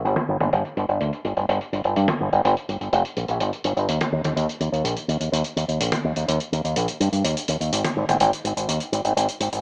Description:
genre	italo disco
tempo	125 BPM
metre	4/4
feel	straight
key	unclear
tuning	A4 = 440 Hz
part	fingered electric bass with an envelope filter	bass	0.0-9.6 s	F1 to G2	-24 LUFS	equal	digital delay
part	tight funk drum kit	drums	0.1-9.6 s	hi-hat, toms	-30 LUFS	equal	low-pass filter on hats, low-pass filter on toms, low-pass filter on snare, low-pass filter on perc, low-pass filter on room, gated reverb
room	little or no reverb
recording	small speaker sound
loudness	-23 LUFS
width	mono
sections	0.0-9.6 A section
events	filter sweep on drum 0.0-9.6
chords	none

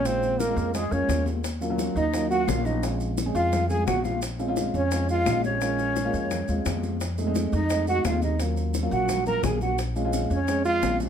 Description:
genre	Afro-Cuban jazz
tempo	173 BPM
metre	4/4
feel	straight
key	Bb minor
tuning	A4 = 440 Hz
part	warm French horn	melody	0.0-11.0 s	Ab3 to Bb4	-27 LUFS	right 2 dB	none
part	breathy mellow jazz flute	second line	0.0-11.0 s	Ab4 to Bb5	-30 LUFS	equal	none
part	dark upright piano	accompaniment	0.0-11.1 s	Db3 to Ab4	-30 LUFS	right 1 dB	none
part	upright bass	bass	0.0-11.1 s	Bb1 to F2	-28 LUFS	equal	none
part	bongos	percussion	0.1-11.1 s	none	-34 LUFS	left 9 dB	none
part	congas	percussion	0.1-11.1 s	none	-35 LUFS	left 4 dB	none
part	maracas	percussion	0.1-11.1 s	none	-39 LUFS	right 4 dB	none
room	little or no reverb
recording	none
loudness	-23 LUFS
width	side -8 dB against mid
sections	0.0-11.1 A section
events	none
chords	0.0 Bbm7; 1.4 Ebm7; 2.8 Bbm7; 7.0 F7#9; 8.4 Ebm7; 9.8 Bbm7

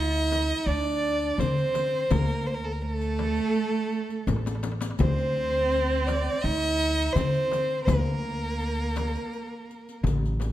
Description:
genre	Arabic maqam ensemble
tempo	83 BPM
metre	4/4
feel	straight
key	D maqam bayati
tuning	A4 = 439 Hz
part	rich violin	melody	0.0-10.0 s	A4 to E5-46c	-28 LUFS	equal	none
part	warm cello	second line	0.0-10.0 s	A3 to E4-49c	-30 LUFS	right 4 dB	none
part	upright bass	bass	0.0-10.5 s	A1 to D3	-28 LUFS	equal	none
part	darbuka	percussion	0.1-10.5 s	none	-31 LUFS	left 3 dB	none
part	frame drum	percussion	0.3-10.5 s	none	-34 LUFS	left 5 dB	none
part	riq	percussion	0.3-10.5 s	none	-39 LUFS	left 5 dB	none
room	moderate recital hall reverb, RT60 1.6 s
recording	dark, warm production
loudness	-24 LUFS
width	side -13 dB against mid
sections	0.0-10.5 A section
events	drum fill 4.3-5.0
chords	none

